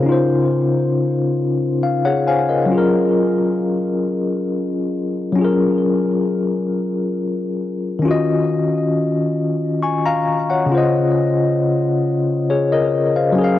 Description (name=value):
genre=R&B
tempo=45 BPM (dotted quarters)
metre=6/8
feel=straight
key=unclear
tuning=A4 = 440 Hz
part: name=tine electric piano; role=solo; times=0.0-13.6 s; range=Db3 to Db6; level=-16 LUFS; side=left 2 dB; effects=medium tremolo, cassette tape, tape echo
room=moderate lush hall reverb, RT60 2.7 s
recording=home recording on cassette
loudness=-16 LUFS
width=side -13 dB against mid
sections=0.0-8.0 A section; 8.0-13.6 B section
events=tine electric piano fill 1.4-2.7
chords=0.0 Dbmaj9; 2.7 Gbmaj9; 8.0 Ebm9; 10.7 Dbmaj9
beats=| 0.04 1.37 | 2.71 4.04 | 5.37 6.71 | 8.04 9.37 | 10.71 12.04 | 13.37